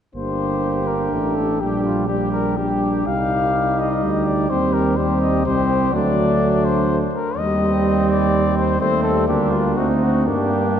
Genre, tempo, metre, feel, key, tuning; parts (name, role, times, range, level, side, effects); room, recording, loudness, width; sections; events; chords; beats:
classical, brass quintet; 124 BPM; 3/4; rubato; G minor; A4 = 440 Hz
warm French horn; accompaniment; 0.1-10.8 s; G3 to Eb4; -23 LUFS; left 1 dB
mellow cornet; melody; 0.2-10.8 s; F4 to F5; -23 LUFS; left 5 dB
warm trumpet; second line; 0.2-10.8 s; C4 to G4; -26 LUFS; right 4 dB
clear trombone; accompaniment; 0.2-10.7 s; F#3 to Bb3; -23 LUFS; right 2 dB
clear bass trombone; bass; 0.2-10.8 s; G1 to G2; -23 LUFS; right 1 dB
wet church reverb, RT60 2.8 s; -17 LUFS; side -9 dB against mid
0.1-10.8 A section
0.1 Gm; 1.6 Gm/Bb; 3.1 Cm; 4.5 Cm/Eb; 5.9 D; 7.4 Cm/Eb; 8.8 Am7b5/Eb; 9.3 Gm/D; 9.8 D7b9; 10.3 Gm
| 0.15 0.64 1.12 | 1.61 2.09 2.58 | 3.07 3.55 4.03 | 4.51 4.98 5.46 | 5.94 6.42 6.89 | 7.39 7.86 8.33 | 8.81 9.28 9.77 | 10.28 10.79